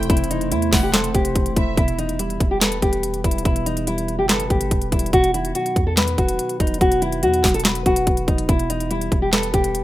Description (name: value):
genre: hip hop, trap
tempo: 143 BPM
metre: 4/4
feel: half-time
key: E harmonic minor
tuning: A4 = 441 Hz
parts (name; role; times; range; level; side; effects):
- nylon-string guitar; melody; 0.0-9.8 s; D#4 to B4; -22 LUFS; equal; low-pass filter, digital delay
- dark studio violin section; second line; 0.0-1.8 s; E5 to F#5; -34 LUFS; right 1 dB; digital delay
- soft electric-piano-like synth keys; accompaniment; 0.0-9.8 s; B2 to C5; -27 LUFS; left 1 dB; chorus, low-pass filter
- glassy FM pad; sustained chords; 0.0-1.7 s; C3 to E4; -30 LUFS; right 1 dB; ensemble chorus, built-in reverb
- long sustained 808-style bass; bass; 0.0-9.8 s; E1 to E2; -26 LUFS; equal; none
- trap drum kit; drums; 0.0-9.8 s; handclaps, hi-hat, kick drum, snare drum; -20 LUFS; equal; none
room: little or no reverb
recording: rough home demo mix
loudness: -17 LUFS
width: side -15 dB against mid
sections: 0.0-1.8 A section; 1.8-9.8 B section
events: none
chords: 0.0 Am/E; 1.8 Em; 5.1 B/E; 8.5 Em